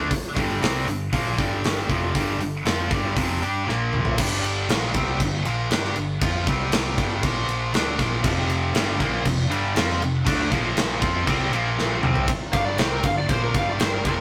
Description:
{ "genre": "hard rock", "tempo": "118 BPM", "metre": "4/4", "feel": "straight", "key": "G minor", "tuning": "A4 = 439 Hz", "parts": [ { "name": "cranked stack guitar", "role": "riff", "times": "0.0-4.2, 8.2-12.3 s", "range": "F2 to G4", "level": "-30 LUFS", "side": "equal", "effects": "overdrive" }, { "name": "tight distorted guitar", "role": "riff", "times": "0.0-14.2 s", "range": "F2 to G4", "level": "-28 LUFS", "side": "equal", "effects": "distortion" }, { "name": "overdriven picked electric bass", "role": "bass", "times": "0.0-14.2 s", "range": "F1 to G2", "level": "-31 LUFS", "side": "equal", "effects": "none" }, { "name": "gated 80s drum kit", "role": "drums", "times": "0.1-14.2 s", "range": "crash cymbal, hi-hat, kick drum, ride cymbal, snare drum, toms", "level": "-27 LUFS", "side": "equal", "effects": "none" }, { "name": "smooth overdriven lead guitar", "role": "melody", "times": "12.5-14.2 s", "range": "Bb4 to F5", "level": "-28 LUFS", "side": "equal", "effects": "none" } ], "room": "moderate stone room reverb, RT60 0.9 s", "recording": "rough rehearsal-room recording, tube saturation", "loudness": "-23 LUFS", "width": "mono", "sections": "0.0-4.2 A section; 4.2-12.3 B section; 12.3-14.2 C section", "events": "drum fill 3.7-4.2, 11.8-12.3; lead electric guitar solo 12.3-14.2", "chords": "0.0 Gm; 3.7 Bb5; 4.2 Gm; 6.5 C5; 7.0 G5; 7.2 Bb5; 7.7 Bbmaj7; 8.2 F5; 10.5 Bb5; 11.0 F5; 11.5 Bb5; 12.0 C5; 12.3 Gm" }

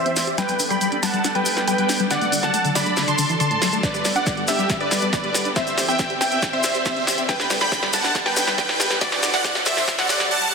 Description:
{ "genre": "uplifting trance", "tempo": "139 BPM", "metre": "4/4", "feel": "straight", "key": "G major", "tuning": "A4 = 442 Hz", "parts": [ { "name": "supersaw chords", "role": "melody", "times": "0.0-10.5 s", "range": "F#4 to C6", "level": "-22 LUFS", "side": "right 1 dB", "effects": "sidechain pumping, low-pass filter, digital delay" }, { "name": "wide unison pluck", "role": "second line", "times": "0.0-10.2 s", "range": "D5 to C6", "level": "-28 LUFS", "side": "moving between left 2 dB and right 5 dB", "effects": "auto-pan, sidechain pumping, digital delay" }, { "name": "lush unison pad", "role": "sustained chords", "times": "0.1-10.3 s", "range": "E3 to D5", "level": "-29 LUFS", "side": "right 1 dB", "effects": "chorus, phaser, sidechain pumping" }, { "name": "tight sequenced synth", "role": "arpeggios", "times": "0.1-10.3 s", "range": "D2 to G4", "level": "-28 LUFS", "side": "left 4 dB", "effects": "chorus, sidechain pumping, digital delay" }, { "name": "punchy analog drum machine", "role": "drums", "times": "0.1-10.3 s", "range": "hi-hat, snare drum", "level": "-24 LUFS", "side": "right 1 dB", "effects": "high-pass filter on snare, sidechain pumping on hats, high-pass filter on hats" }, { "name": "maracas", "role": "percussion", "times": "0.2-10.3 s", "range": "none", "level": "-28 LUFS", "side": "left 3 dB", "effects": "none" }, { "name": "electronic kick drum", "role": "drums", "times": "3.8-10.0 s", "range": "none", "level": "-29 LUFS", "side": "equal", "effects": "none" }, { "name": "riser and swell", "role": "sound effects", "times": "5.1-10.5 s", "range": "none", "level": "-35 LUFS", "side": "right 1 dB", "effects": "none" } ], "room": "wet lush hall reverb, RT60 1.9 s", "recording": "dense, heavily limited modern master, high-pass filter", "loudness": "-18 LUFS", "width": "side -5 dB against mid", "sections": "0.0-10.5 A section", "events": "build-up 0.0-10.5; drum fill 0.0-10.3; filter sweep on supersaw synth 0.0-10.5; filter sweep on synth arpeggio sound 0.0-10.5; filter sweep on synth pluck 0.0-10.5; filter sweep 0.0-10.5; riser 5.1-10.5; swell 9.9-10.5", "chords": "0.4 Gadd9; 2.1 D; 3.8 Gadd9; 5.6 Cadd9; 7.3 Gadd9; 9.0 D" }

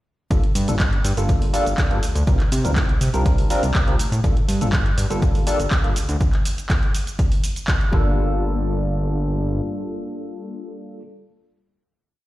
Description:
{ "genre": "filtered disco house", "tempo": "122 BPM", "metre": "4/4", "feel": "straight", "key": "G minor", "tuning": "A4 = 439 Hz", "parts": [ { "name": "barky tine electric piano", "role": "accompaniment", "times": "0.3-11.0 s", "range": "G3 to Bb4", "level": "-26 LUFS", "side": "left 1 dB", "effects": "overdrive, phaser, sidechain pumping" }, { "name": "fat analog bass", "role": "bass", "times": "0.3-9.6 s", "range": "G1 to C3", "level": "-22 LUFS", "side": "equal", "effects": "sidechain pumping" }, { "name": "electronic kick drum", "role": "drums", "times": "0.3-8.0 s", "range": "none", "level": "-20 LUFS", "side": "equal", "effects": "none" }, { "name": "punchy analog drum machine", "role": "drums", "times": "0.3-7.9 s", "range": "handclaps, hi-hat, shaker", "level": "-28 LUFS", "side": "right 1 dB", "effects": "sidechain pumping on hats, sidechain pumping on perc" } ], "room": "digital ambience", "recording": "played on a big sound system in a bare room, stone room reverb", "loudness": "-18 LUFS", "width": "side -16 dB against mid", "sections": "0.3-8.2 drop; 8.2-12.1 final hit", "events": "drop 0.3-8.2", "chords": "0.3 Gm7; 2.3 C7sus4; 4.2 Gm7; 6.2 N.C.; 7.9 Gm7" }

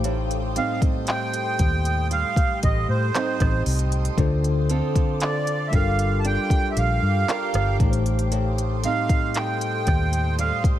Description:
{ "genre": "contemporary R&B", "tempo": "58 BPM", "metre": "4/4", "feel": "straight", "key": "unclear", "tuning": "A4 = 439 Hz", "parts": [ { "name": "mellow tine electric piano", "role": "accompaniment", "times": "0.0-10.8 s", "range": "A2 to C5", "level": "-28 LUFS", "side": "left 4 dB", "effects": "slow stereo tremolo" }, { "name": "ethereal airy pad", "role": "sustained chords", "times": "0.0-10.8 s", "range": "G4 to Eb6", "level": "-33 LUFS", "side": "equal", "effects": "ensemble chorus, built-in reverb, phaser, sidechain pumping" }, { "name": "picked acoustic archtop guitar", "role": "arpeggios", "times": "0.0-10.8 s", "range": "A2 to Bb4", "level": "-30 LUFS", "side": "right 5 dB", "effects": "tape echo" }, { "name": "vintage muted fingered electric bass", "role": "bass", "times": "0.0-10.5 s", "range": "G1 to A2", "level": "-23 LUFS", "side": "equal", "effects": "none" }, { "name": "smooth R&B drum kit", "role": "drums", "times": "0.0-10.8 s", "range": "handclaps, hi-hat, kick drum, rim click", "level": "-23 LUFS", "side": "equal", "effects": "none" }, { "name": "accordion", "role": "melody", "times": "0.6-10.6 s", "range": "C5 to A5", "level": "-27 LUFS", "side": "right 3 dB", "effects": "light tremolo tuning, tape echo" } ], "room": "little or no reverb", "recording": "none", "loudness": "-20 LUFS", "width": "side -12 dB against mid", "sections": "0.0-10.8 A section", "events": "none", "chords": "0.0 Am7b5; 4.2 Dm7; 5.7 Gm7; 7.8 Am7b5" }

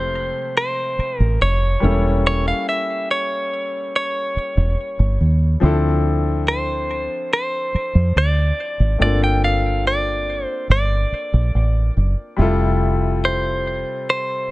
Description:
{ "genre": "contemporary R&B", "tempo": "71 BPM", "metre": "4/4", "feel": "straight", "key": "F major", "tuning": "A4 = 442 Hz", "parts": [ { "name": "direct-recorded clean electric guitar", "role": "melody", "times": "0.0-14.5 s", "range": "C5 to G5", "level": "-22 LUFS", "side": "equal", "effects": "digital delay" }, { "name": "clear concert grand piano", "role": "accompaniment", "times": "0.0-14.5 s", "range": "C3 to A4", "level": "-25 LUFS", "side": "left 3 dB", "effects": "none" }, { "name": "deep dub fingered electric bass", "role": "bass", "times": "0.0-13.8 s", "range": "E1 to F2", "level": "-18 LUFS", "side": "equal", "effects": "none" } ], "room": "small room ambience", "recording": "none", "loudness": "-17 LUFS", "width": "side -19 dB against mid", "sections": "0.0-14.5 A section", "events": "none", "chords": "0.0 Fmaj9; 1.8 A7b9/E; 5.6 Dm9; 9.0 Gm11; 12.4 Fmaj9" }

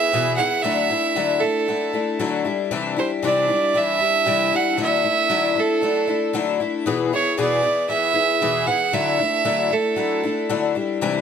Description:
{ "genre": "rock", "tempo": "116 BPM", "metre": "4/4", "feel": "straight", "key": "unclear", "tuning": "A4 = 440 Hz", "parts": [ { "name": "bright fiddle", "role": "melody", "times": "0.0-10.5 s", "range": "A4 to F#5", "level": "-20 LUFS", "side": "right 5 dB", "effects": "digital delay" }, { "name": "picked twelve-string acoustic guitar", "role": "accompaniment", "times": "0.0-11.2 s", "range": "E2 to G#4", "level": "-22 LUFS", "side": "left 6 dB", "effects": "none" } ], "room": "light reverb", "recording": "dark, warm production", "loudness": "-18 LUFS", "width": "side -7 dB against mid", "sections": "0.0-11.2 A section", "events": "none", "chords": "0.0 E; 0.6 Dadd9; 2.5 Cadd9; 4.8 Dadd9; 6.9 E; 8.9 Dadd9" }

